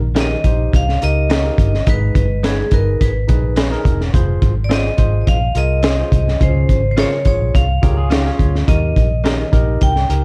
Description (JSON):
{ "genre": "uptempo 1960s-style soul", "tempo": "106 BPM", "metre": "4/4", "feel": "straight", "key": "Eb mixolydian", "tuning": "A4 = 440 Hz", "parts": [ { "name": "barky tine electric piano", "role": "accompaniment", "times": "0.0-10.2 s", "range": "Db3 to Db5", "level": "-27 LUFS", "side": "equal", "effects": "none" }, { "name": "vintage muted fingered electric bass", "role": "bass", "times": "0.0-10.2 s", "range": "Fb1 to Eb2", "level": "-20 LUFS", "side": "equal", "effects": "none" }, { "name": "direct-recorded clean electric guitar", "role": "stabs", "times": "0.1-9.4 s", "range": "Bb3 to Db5", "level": "-33 LUFS", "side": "equal", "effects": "none" }, { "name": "vibraphone with hard mallets", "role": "melody", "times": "0.2-10.2 s", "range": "Ab4 to G5", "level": "-24 LUFS", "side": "equal", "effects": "tape echo" }, { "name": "crunchy breakbeat drum kit", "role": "drums", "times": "0.2-10.2 s", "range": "hi-hat, kick drum, snare drum", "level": "-19 LUFS", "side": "equal", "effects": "none" }, { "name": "electric guitar through a small old amp", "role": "riff", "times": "7.8-8.7 s", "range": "Db4 to Bb4", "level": "-29 LUFS", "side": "equal", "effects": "none" } ], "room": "little or no reverb", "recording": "dark, warm production", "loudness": "-15 LUFS", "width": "mono", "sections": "0.0-10.2 A section", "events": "none", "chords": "0.0 Eb; 1.9 Abm; 4.1 Fm; 6.4 Db; 8.7 Eb" }